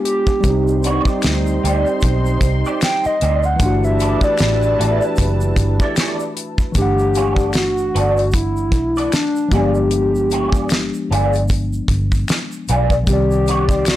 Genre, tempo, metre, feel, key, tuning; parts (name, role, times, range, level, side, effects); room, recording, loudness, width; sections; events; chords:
R&B, neo-soul; 76 BPM; 4/4; swing 59% on 16ths; G major; A4 = 440 Hz
hollow clarinet-like synth lead; melody; 0.0-14.0 s; D4 to G5; -19 LUFS; equal; chorus, slapback echo
tine electric piano; accompaniment; 0.0-14.0 s; Eb3 to Ab5; -23 LUFS; left 3 dB
damped 70s drum kit; drums; 0.1-14.0 s; hi-hat, kick drum, snare drum; -19 LUFS; equal
egg shaker and finger snaps; percussion; 0.3-14.0 s; -35 LUFS; left 2 dB
lush unison pad; sustained chords; 0.4-6.7, 13.1-14.0 s; Eb3 to C6; -29 LUFS; equal; chorus, phaser
mellow trombone section; stabs; 0.4-6.3 s; E3 to G4; -24 LUFS; right 4 dB; slapback echo
vintage muted fingered electric bass; bass; 0.4-14.0 s; F#1 to D2; -19 LUFS; equal; tube saturation
electric guitar through a small old amp; second line; 0.8-13.9 s; B3 to D5; -21 LUFS; right 1 dB; wah, ensemble chorus
light reverb; blown-out, overdriven recording, overdrive; -14 LUFS; side -14 dB against mid
0.0-6.8 A section; 6.8-14.0 B section
soft synth lead solo 0.0-6.8
0.4 Cmadd9; 3.6 G69; 6.8 Gmaj9; 9.5 G7b9; 13.1 Cmadd9